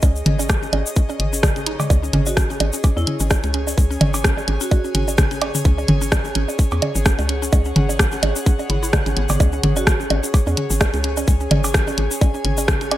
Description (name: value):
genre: minimal techno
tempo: 128 BPM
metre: 4/4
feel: swing 56% on 16ths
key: unclear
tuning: A4 = 439 Hz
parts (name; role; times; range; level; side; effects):
- mallet-like synth pluck; riff; 0.0-13.0 s; G#3 to G#4; -29 LUFS; equal; chorus, sidechain pumping, ping-pong delay
- hollow knocking FM bass; bass; 0.0-13.0 s; G#1 to E2; -22 LUFS; equal; sidechain pumping
- electronic kick drum; drums; 0.0-12.8 s; none; -16 LUFS; equal; none
- electronic bongos, toms and cowbell; percussion; 0.0-13.0 s; none; -23 LUFS; right 2 dB; gated reverb
- tube shaker; percussion; 0.0-12.9 s; none; -29 LUFS; left 3 dB; none
- airy breathy pad; texture; 0.0-13.0 s; G#4 to G#5; -28 LUFS; equal; chorus, sidechain pumping
- garage drum kit; drums; 0.3-13.0 s; hi-hat, rim click; -22 LUFS; equal; gated reverb
- vibraphone with hard mallets; melody; 2.3-5.1, 9.8-10.4 s; E4 to G#4; -31 LUFS; right 2 dB; ping-pong delay
room: light reverb, digital ambience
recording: bright 1980s-style digital production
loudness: -16 LUFS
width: side -14 dB against mid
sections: 0.0-13.0 A section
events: none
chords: 0.0 C#5